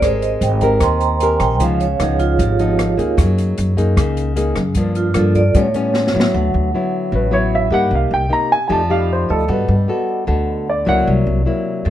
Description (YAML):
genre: bossa nova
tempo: 152 BPM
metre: 4/4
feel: straight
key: unclear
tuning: A4 = 440 Hz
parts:
  - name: nylon-string guitar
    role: accompaniment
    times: 0.0-11.9 s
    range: G2 to Bb4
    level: -19 LUFS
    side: left 2 dB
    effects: none
  - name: vibraphone with medium mallets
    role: accompaniment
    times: 0.0-11.9 s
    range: F4 to C6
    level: -21 LUFS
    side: right 5 dB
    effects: none
  - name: upright bass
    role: bass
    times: 0.0-11.9 s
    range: Ab1 to A2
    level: -18 LUFS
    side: equal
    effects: none
  - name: open jazz drum kit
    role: drums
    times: 0.0-6.3 s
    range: hi-hat, kick drum, rim click, snare drum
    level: -21 LUFS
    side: equal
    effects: none
  - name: warm baby grand piano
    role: melody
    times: 7.2-11.1 s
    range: A4 to Bb5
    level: -18 LUFS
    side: right 1 dB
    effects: none
room: light reverb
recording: dark, warm production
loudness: -14 LUFS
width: side -12 dB against mid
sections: 0.0-6.3 A section; 6.3-11.9 A section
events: vibraphone solo 0.0-6.3; drum fill 5.9-6.3; grand piano solo 6.3-11.9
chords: 0.0 Abmaj9; 1.6 Db9; 3.2 Gb69; 4.8 Gm7; 5.5 A9; 6.3 D69; 7.9 Cm7; 8.7 F9; 9.5 Gmaj9; 11.1 C7#11